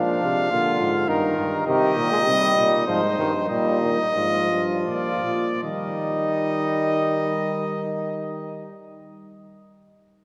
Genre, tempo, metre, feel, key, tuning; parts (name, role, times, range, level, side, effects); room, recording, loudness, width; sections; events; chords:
classical, imitative canzona for brass ensemble; 75-106 BPM; 3/4; straight; Eb major; A4 = 441 Hz
clear trumpet; melody; 0.0-8.8 s; Bb4 to F5; -27 LUFS; equal
mellow flugelhorn; second line; 0.0-8.8 s; D4 to G4; -29 LUFS; equal
clear trombone; accompaniment; 0.0-8.8 s; D3 to Ab3; -30 LUFS; equal
mellow bass trombone; bass; 0.0-8.8 s; G2 to Eb3; -30 LUFS; equal
wet church reverb, RT60 3.5 s; -22 LUFS; mono
0.0-5.6 A section; 5.6-10.2 B section
slowing down 0.8-5.6
0.0 Bb; 1.1 Eb/G; 1.7 Cm; 2.9 Ab; 3.5 Eb/Bb; 4.9 Bb; 5.6 Eb